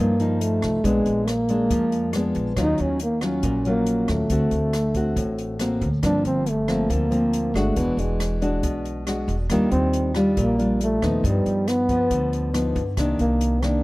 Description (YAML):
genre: bossa nova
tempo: 138 BPM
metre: 4/4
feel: straight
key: unclear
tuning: A4 = 439 Hz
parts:
  - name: mellow trombone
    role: melody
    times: 0.0-13.8 s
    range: G3 to Eb4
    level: -23 LUFS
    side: equal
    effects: none
  - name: nylon-string guitar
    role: accompaniment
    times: 0.0-13.8 s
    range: G2 to F#4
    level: -24 LUFS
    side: left 1 dB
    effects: none
  - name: upright bass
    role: bass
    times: 0.0-13.8 s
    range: E1 to G2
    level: -26 LUFS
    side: equal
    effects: none
  - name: open jazz drum kit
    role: drums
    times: 0.2-13.7 s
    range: hi-hat, kick drum, rim click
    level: -30 LUFS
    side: equal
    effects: none
room: studio reverb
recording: dry, close 1970s-style studio recording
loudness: -20 LUFS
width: side -20 dB against mid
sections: 0.0-13.8 A section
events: none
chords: 0.0 Cm7; 0.8 Bb7b9; 2.6 Ebm9; 4.3 D7b13; 6.0 Gm11; 7.8 E9; 9.5 Ebmaj9; 11.2 G7b13; 13.0 Cm9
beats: 0.41 | 0.84 1.27 1.71 2.14 | 2.57 3.00 3.44 3.87 | 4.30 4.73 5.17 5.60 | 6.03 6.46 6.90 7.33 | 7.76 8.20 8.63 9.07 | 9.50 9.94 10.37 10.80 | 11.24 11.67 12.11 12.54 | 12.97 13.41